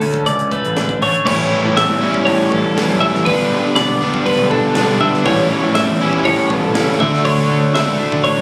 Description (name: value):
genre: math rock and midwest emo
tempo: 120 BPM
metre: 4/4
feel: straight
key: unclear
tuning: A4 = 440 Hz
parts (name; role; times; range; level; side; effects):
- twelve-string electric guitar; accompaniment; 0.0-8.4 s; D2 to F#4; -25 LUFS; equal; none
- twelve-string electric guitar; arpeggios; 0.0-8.4 s; A4 to E5; -20 LUFS; equal; none
- growling picked electric bass; bass; 0.0-8.4 s; E1 to D3; -23 LUFS; equal; overdrive
- crisp fusion drum kit; drums; 0.0-8.4 s; crash cymbal, hi-hat, kick drum, snare drum; -28 LUFS; equal; none
- crunchy overdriven guitar; riff; 1.3-8.4 s; G2 to F#4; -19 LUFS; equal; none
room: light reverb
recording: recorded on a phone in the room, club reverb, compression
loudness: -15 LUFS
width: mono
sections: 0.0-1.3 A section; 1.3-8.4 B section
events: none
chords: 0.0 Dmaj7; 1.3 A7; 3.3 G69; 5.3 A7; 7.0 Dmaj7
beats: 0.27 0.77 | 1.27 1.77 2.27 2.77 | 3.27 3.76 4.26 4.76 | 5.26 5.76 6.25 6.75 | 7.25 7.75 8.25